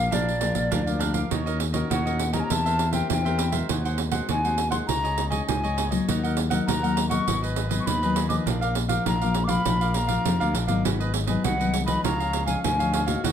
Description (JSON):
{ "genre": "samba and choro", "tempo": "101 BPM", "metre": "4/4", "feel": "straight", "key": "unclear", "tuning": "A4 = 443 Hz", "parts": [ { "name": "hollow concert flute", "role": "melody", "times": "0.0-13.1 s", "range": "D5 to D6", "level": "-28 LUFS", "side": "left 2 dB", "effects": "none" }, { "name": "cavaquinho", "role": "accompaniment", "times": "0.0-13.3 s", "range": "D4 to Gb5", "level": "-31 LUFS", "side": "right 3 dB", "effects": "none" }, { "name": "nylon-string guitar", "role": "accompaniment", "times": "0.0-13.3 s", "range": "F2 to Ab4", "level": "-29 LUFS", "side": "left 4 dB", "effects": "none" }, { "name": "modern bright picked electric bass", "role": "bass", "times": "0.0-13.3 s", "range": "Ab1 to F2", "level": "-27 LUFS", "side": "left 1 dB", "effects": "none" }, { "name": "pandeiro", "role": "percussion", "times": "0.1-13.3 s", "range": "none", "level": "-29 LUFS", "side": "right 8 dB", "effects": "none" } ], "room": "moderate large studio reverb, RT60 0.9 s", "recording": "none", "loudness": "-22 LUFS", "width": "side -8 dB against mid", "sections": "0.0-1.3 A section; 1.3-13.3 B section", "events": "none", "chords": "0.0 Bb; 1.3 Ebm7; 2.5 C7/E; 3.7 Ab7/Eb; 4.9 Dbsus2; 6.1 Ebm; 7.3 Abm7; 12.0 Db", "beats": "0.12 0.72 | 1.31 1.91 2.50 3.10 | 3.70 4.29 4.89 5.49 | 6.08 6.68 7.27 7.87 | 8.47 9.06 9.66 10.26 | 10.85 11.45 12.04 12.64 | 13.24" }